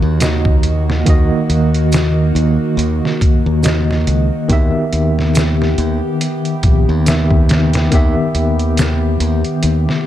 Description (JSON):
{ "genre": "trip hop", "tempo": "70 BPM", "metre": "4/4", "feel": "swing 57% on 16ths", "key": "unclear", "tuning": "A4 = 440 Hz", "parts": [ { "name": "tine electric piano", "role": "accompaniment", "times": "0.0-10.1 s", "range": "Eb3 to E5", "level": "-17 LUFS", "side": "equal", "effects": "medium stereo tremolo, vintage 12-bit sampler grit, tape echo" }, { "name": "warbly tape-like pad", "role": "sustained chords", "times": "0.0-10.1 s", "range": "Eb3 to G4", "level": "-23 LUFS", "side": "right 1 dB", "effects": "chorus, built-in reverb, phaser" }, { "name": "modern bright fingered electric bass", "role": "bass", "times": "0.0-9.9 s", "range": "Bb1 to Eb2", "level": "-16 LUFS", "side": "equal", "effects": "none" }, { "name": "trip hop sampler-style drum kit", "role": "drums", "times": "0.2-10.1 s", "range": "hi-hat, kick drum, snare drum", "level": "-16 LUFS", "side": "equal", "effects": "studio reverb" }, { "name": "maracas", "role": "percussion", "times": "0.2-9.0 s", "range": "none", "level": "-31 LUFS", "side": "left 1 dB", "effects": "none" } ], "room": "digital ambience", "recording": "dark, warm production", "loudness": "-12 LUFS", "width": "side -12 dB against mid", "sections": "0.0-10.1 A section", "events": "none", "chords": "0.0 Ebm; 4.5 Em" }